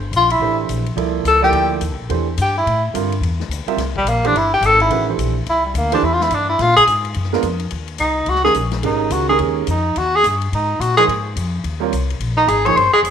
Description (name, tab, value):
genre	modal jazz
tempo	214 BPM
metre	4/4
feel	swing 62% on 8ths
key	C mixolydian, Eb mixolydian from 7.7 s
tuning	A4 = 440 Hz
part	upright bass	bass	0.0-13.1 s	F1 to Bb2	-22 LUFS	left 2 dB	none
part	swinging big-band drum kit	drums	0.1-13.1 s	hi-hat, kick drum, ride cymbal, snare drum	-31 LUFS	left 12 dB	none
part	warm tenor saxophone	melody	0.2-13.0 s	G3 to Db5	-15 LUFS	left 1 dB	slapback echo
part	warm baby grand piano	accompaniment	0.4-12.8 s	D3 to E5	-22 LUFS	right 11 dB	none
room	wet spring reverb, RT60 1.6 s, small room ambience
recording	1960s-style stereo with parts hard left and right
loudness	-15 LUFS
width	side -8 dB against mid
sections	0.0-7.7 A section; 7.7-13.1 A section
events	tenor saxophone solo 0.0-13.1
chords	0.0 C9; 6.6 Bb7(no3); 7.7 Eb13sus4; 10.0 Absus2/Eb; 12.2 Ebsus4 (rootless)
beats	0.13 0.41 0.69 | 0.97 1.25 1.54 1.82 | 2.10 2.38 2.66 2.94 | 3.22 3.50 3.79 4.07 | 4.35 4.63 4.91 5.19 | 5.47 5.75 6.03 6.31 | 6.59 6.87 7.16 7.43 | 7.72 8.00 8.28 8.56 | 8.84 9.12 9.40 9.68 | 9.96 10.24 10.52 10.80 | 11.08 11.36 11.64 11.92 | 12.21 12.48 12.77 13.05